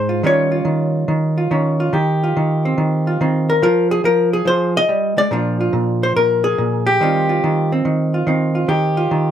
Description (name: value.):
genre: solo jazz.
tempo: 142 BPM.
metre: 4/4.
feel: swing 67% on 8ths.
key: Eb mixolydian.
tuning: A4 = 443 Hz.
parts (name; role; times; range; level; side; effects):
hollow-body jazz guitar; solo; 0.0-9.3 s; Ab2 to Eb5; -15 LUFS; equal; none.
room: light reverb.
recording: close, detailed microphones.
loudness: -15 LUFS.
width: side -10 dB against mid.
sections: 0.0-9.3 A section.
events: none.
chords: 0.2 Eb13; 3.6 Fm7; 5.3 Bb7; 7.0 Eb69.